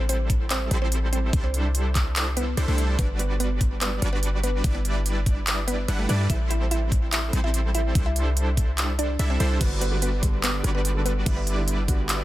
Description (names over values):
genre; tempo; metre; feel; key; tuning
future bass; 145 BPM; 4/4; half-time; G major; A4 = 441 Hz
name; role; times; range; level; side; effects
supersaw stab; riff; 0.0-12.2 s; G3 to F#5; -30 LUFS; right 1 dB; sidechain pumping, digital delay
warm 808-style bass; bass; 0.0-12.2 s; G1 to G2; -25 LUFS; equal; sidechain pumping
mallet-like synth pluck; melody; 0.1-11.6 s; A3 to E5; -32 LUFS; equal; chorus, phaser, cassette tape, sidechain pumping, digital delay
pop drum kit; drums; 0.1-12.2 s; crash cymbal, handclaps, hi-hat; -28 LUFS; equal; none
electronic kick drum; drums; 0.3-12.0 s; none; -23 LUFS; equal; none
dark baby grand piano; accompaniment; 9.6-12.2 s; D3 to A4; -31 LUFS; right 2 dB; sidechain pumping, digital delay
room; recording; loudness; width
little or no reverb; dense, heavily limited modern master; -21 LUFS; side -15 dB against mid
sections
0.0-12.2 A section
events
none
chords
0.0 Am7; 1.3 C69; 3.0 Gmaj7; 4.6 Em7/G; 6.3 Am7; 8.0 C69; 9.6 Gmaj7; 11.3 Em7/G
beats
0.09 0.51 0.92 | 1.33 1.75 2.16 2.57 | 2.99 3.40 3.81 4.23 | 4.64 5.06 5.47 5.88 | 6.30 6.71 7.12 7.54 | 7.95 8.37 8.78 9.19 | 9.61 10.02 10.44 10.85 | 11.26 11.68 12.09